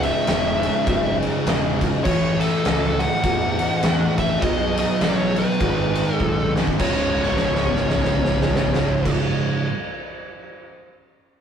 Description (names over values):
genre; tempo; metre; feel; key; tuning
stoner and doom metal; 101 BPM; 4/4; swing 59% on 8ths; C# minor; A4 = 440 Hz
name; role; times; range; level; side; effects
fuzz lead guitar; melody; 0.0-9.1 s; A4 to F#5; -24 LUFS; equal; distortion
overdriven electric guitar; riff; 0.0-9.7 s; C#2 to B3; -31 LUFS; right 1 dB; none
thick fuzz guitar; riff; 0.0-9.7 s; C#2 to B3; -29 LUFS; left 2 dB; none
thick fuzz guitar; riff; 0.0-9.7 s; C#2 to B3; -26 LUFS; right 3 dB; distortion
fuzz fingered electric bass; bass; 0.0-9.1 s; C#1 to E2; -28 LUFS; equal; overdrive
oversized low-tuned drum kit; drums; 0.0-10.6 s; crash cymbal, kick drum, ride cymbal, snare drum, toms; -22 LUFS; left 1 dB; none
room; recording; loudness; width
moderate studio reverb, RT60 0.6 s; rough rehearsal-room recording, warm saturation; -18 LUFS; side -8 dB against mid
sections
0.0-6.8 A section; 6.8-9.2 B section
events
drum fill 6.2-6.8, 7.1-9.0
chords
0.0 C#m; 2.0 A; 4.4 B5; 5.6 G#m; 6.8 C#5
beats
0.27 0.86 1.45 | 2.05 2.64 3.23 3.83 | 4.42 5.01 5.61 6.20 | 6.79 7.39 7.98 8.58